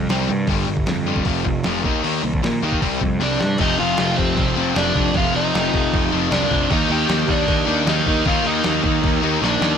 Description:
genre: punk rock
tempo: 154 BPM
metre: 4/4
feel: straight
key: unclear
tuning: A4 = 440 Hz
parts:
  - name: overdriven semi-hollow guitar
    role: riff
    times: 0.0-9.8 s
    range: F2 to Eb4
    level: -24 LUFS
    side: left 15 dB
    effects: none
  - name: sludgy distorted guitar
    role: riff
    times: 0.0-9.8 s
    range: F2 to Eb4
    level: -24 LUFS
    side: right 12 dB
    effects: overdrive
  - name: fuzz picked electric bass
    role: bass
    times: 0.0-9.8 s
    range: F1 to Bb2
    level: -24 LUFS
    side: equal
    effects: overdrive
  - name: dusty soul sampler-style drum kit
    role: drums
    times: 0.1-9.7 s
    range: crash cymbal, hi-hat, kick drum, snare drum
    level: -23 LUFS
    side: equal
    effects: none
  - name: overdriven semi-hollow guitar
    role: melody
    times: 3.2-9.8 s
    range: C4 to G5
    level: -22 LUFS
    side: equal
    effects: digital delay
  - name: sludgy distorted guitar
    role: riff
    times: 3.6-9.8 s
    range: F2 to Eb4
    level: -25 LUFS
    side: left 1 dB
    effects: overdrive
room: little or no reverb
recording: none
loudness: -16 LUFS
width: side -7 dB against mid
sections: 0.0-3.6 A section; 3.6-9.8 B section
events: drum fill 3.2-3.6, 9.4-9.8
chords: 0.5 G5; 1.3 F5; 1.9 Eb5; 2.8 C5; 3.6 F5; 6.7 Eb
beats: 0.10 | 0.49 0.88 1.27 1.66 | 2.05 2.44 2.83 3.22 | 3.61 4.00 4.39 4.78 | 5.16 5.55 5.94 6.33 | 6.72 7.11 7.49 7.88 | 8.27 8.66 9.05 9.44

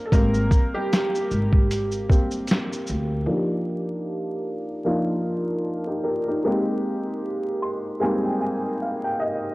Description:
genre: lo-fi hip hop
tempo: 76 BPM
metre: 4/4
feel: swing 55% on 16ths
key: Eb major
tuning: A4 = 439 Hz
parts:
  - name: felt-muted upright piano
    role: accompaniment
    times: 0.0-9.5 s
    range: F3 to C6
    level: -24 LUFS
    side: equal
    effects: low-pass filter, cassette tape
  - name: upright bass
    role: bass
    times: 0.1-3.2 s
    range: Ab1 to D2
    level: -24 LUFS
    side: equal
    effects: tube saturation
  - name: lo-fi sampler-style drum kit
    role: drums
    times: 0.1-3.1 s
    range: hi-hat, kick drum, shaker, snare drum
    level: -20 LUFS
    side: equal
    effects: none
room: moderate spring reverb, RT60 2.5 s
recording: home recording on cassette, vinyl crackle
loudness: -22 LUFS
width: side -21 dB against mid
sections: 0.0-3.3 A section; 3.3-9.5 B section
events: felt piano solo 0.0-3.3; filter sweep on felt piano 3.3-9.5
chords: 0.1 Abmaj9; 3.3 Ebmaj9; 6.4 Abmaj9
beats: | 0.12 0.91 1.70 2.49 | 3.28 4.07 4.86 5.65 | 6.44 7.22 8.02 8.80

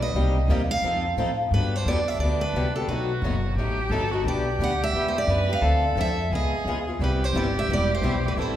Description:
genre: acoustic string swing (jazz manouche)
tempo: 175 BPM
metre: 4/4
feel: swing 61% on 8ths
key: unclear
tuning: A4 = 440 Hz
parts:
  - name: picked steel-string acoustic guitar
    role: melody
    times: 0.0-8.6 s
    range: A4 to F#5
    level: -27 LUFS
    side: right 1 dB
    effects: none
  - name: upright bass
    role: bass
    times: 0.0-8.6 s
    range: E1 to A2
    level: -25 LUFS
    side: equal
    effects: none
  - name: picked swing-style acoustic guitar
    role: accompaniment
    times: 0.1-8.6 s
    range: B2 to A4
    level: -30 LUFS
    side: left 3 dB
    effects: none
  - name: picked steel-string acoustic guitar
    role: accompaniment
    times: 0.2-1.3, 7.0-8.6 s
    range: C3 to A4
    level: -33 LUFS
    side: right 4 dB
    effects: none
  - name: clear violin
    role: second line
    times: 1.5-8.6 s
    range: D4 to B4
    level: -30 LUFS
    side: right 1 dB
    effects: none
room: wet recital hall reverb, RT60 1.6 s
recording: recorded in a church or concert hall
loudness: -22 LUFS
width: side -11 dB against mid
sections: 0.0-1.5 A section; 1.5-8.6 B section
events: none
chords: 0.2 Cm7; 0.8 F7; 1.5 Gmaj7; 2.9 B7b13; 4.3 Em9; 5.6 Dm7; 6.3 C#9; 7.0 Cmaj7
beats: | 0.15 0.49 0.83 1.18 | 1.52 1.86 2.20 2.55 | 2.89 3.23 3.58 3.92 | 4.26 4.60 4.95 5.29 | 5.63 5.97 6.32 6.66 | 7.00 7.34 7.69 8.03 | 8.37

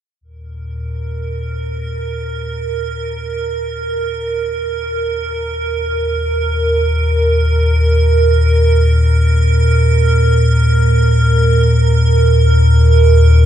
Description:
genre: dark ambient drone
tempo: free time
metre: none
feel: none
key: unclear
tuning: A4 = 438 Hz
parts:
  - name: deep rumbling drone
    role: drone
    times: 0.2-13.5 s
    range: Eb2 to Bb2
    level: -13 LUFS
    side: left 1 dB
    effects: built-in reverb
  - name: icy glass pad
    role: texture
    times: 1.0-13.5 s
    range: Bb4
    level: -18 LUFS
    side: right 4 dB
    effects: chorus, built-in reverb
room: moderate cathedral reverb, RT60 4.7 s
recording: in a vast, echoing space, cassette tape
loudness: -12 LUFS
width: side -10 dB against mid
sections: 0.2-13.5 A section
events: none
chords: 0.2 Eb5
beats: free time

